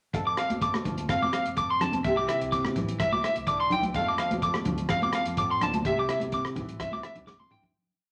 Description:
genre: highlife guitar band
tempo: 126 BPM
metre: 4/4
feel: straight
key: F major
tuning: A4 = 440 Hz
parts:
  - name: nylon-string guitar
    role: accompaniment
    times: 0.1-7.7 s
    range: F2 to A4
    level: -35 LUFS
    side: equal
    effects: none
  - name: electric guitar at the edge of break-up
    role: arpeggios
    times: 0.1-7.6 s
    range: E5 to D6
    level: -30 LUFS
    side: equal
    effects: none
  - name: fingered electric bass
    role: bass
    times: 0.1-7.7 s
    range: F1 to F2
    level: -42 LUFS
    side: equal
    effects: none
  - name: warm soul drum kit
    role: drums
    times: 0.1-7.7 s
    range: hi-hat, kick drum, rim click, snare drum, toms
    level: -36 LUFS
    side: equal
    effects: none
  - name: congas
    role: percussion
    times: 0.5-7.7 s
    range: none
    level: -36 LUFS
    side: equal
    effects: none
room: wet large studio reverb, RT60 0.9 s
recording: none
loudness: -27 LUFS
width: mono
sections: 0.1-7.8 groove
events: fade-out 5.9-7.8; drum fill 7.3-7.8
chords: 0.1 F; 2.1 C; 4.0 F; 5.9 C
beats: | 0.14 0.62 1.10 1.57 | 2.05 2.53 3.00 3.48 | 3.95 4.43 4.90 5.38 | 5.85 6.33 6.80 7.28

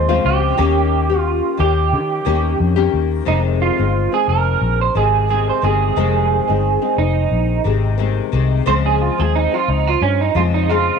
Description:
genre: indie pop, bedroom pop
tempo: 89 BPM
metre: 4/4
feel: swing 55% on 16ths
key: F minor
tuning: A4 = 441 Hz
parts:
  - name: electric guitar through a small old amp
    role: melody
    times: 0.0-11.0 s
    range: Db4 to C5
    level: -18 LUFS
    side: right 11 dB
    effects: ensemble chorus, tape echo
  - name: nylon-string guitar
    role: accompaniment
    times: 0.0-11.0 s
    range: F2 to G4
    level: -20 LUFS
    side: left 15 dB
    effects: analog chorus, warbly pitch drift
  - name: vintage muted fingered electric bass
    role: bass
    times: 0.0-10.9 s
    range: F1 to Eb3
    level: -18 LUFS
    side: left 1 dB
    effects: none
room: light reverb, studio ambience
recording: 1960s-style stereo with parts hard left and right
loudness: -14 LUFS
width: side -6 dB against mid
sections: 0.0-3.3 A section; 3.3-11.0 B section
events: clean electric guitar solo 3.3-11.0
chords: 0.0 Dbmaj7; 0.6 Eb7; 3.3 Fm7; 8.7 Dbmaj7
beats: | 0.58 1.25 1.93 2.60 | 3.27 3.95 4.62 5.30 | 5.97 6.65 7.32 8.00 | 8.67 9.34 10.02 10.69

